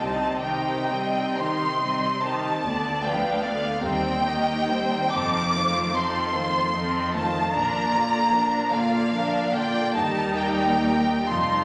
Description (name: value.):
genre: classical, slow romantic movement for string orchestra.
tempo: 41-52 BPM (dotted quarters).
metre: 6/8.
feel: rubato.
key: Bb major.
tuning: A4 = 440 Hz.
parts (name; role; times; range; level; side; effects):
rich chamber violin section; melody; 0.0-11.6 s; F5 to D6; -27 LUFS; equal; none.
rich chamber violin section; second line; 0.0-11.6 s; D4 to F5; -32 LUFS; equal; none.
rich chamber viola section; accompaniment; 0.0-11.6 s; D3 to Eb4; -31 LUFS; equal; none.
rich studio cello section; bass; 0.0-11.6 s; D2 to C3; -32 LUFS; equal; none.
rich symphonic double bass section; bass; 0.0-11.6 s; F1 to Eb2; -41 LUFS; equal; none.
room: wet scoring stage reverb, RT60 1.4 s.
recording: none.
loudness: -24 LUFS.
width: mono.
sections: 0.0-11.6 A section.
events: none.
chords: 0.0 Cm; 2.6 Bdim/D; 3.8 Cm/Eb; 5.1 F7; 7.5 Bb; 10.0 Eb.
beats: | 0.00 1.38 | 2.65 3.82 | 5.13 6.34 | 7.55 8.72 | 9.96 11.29.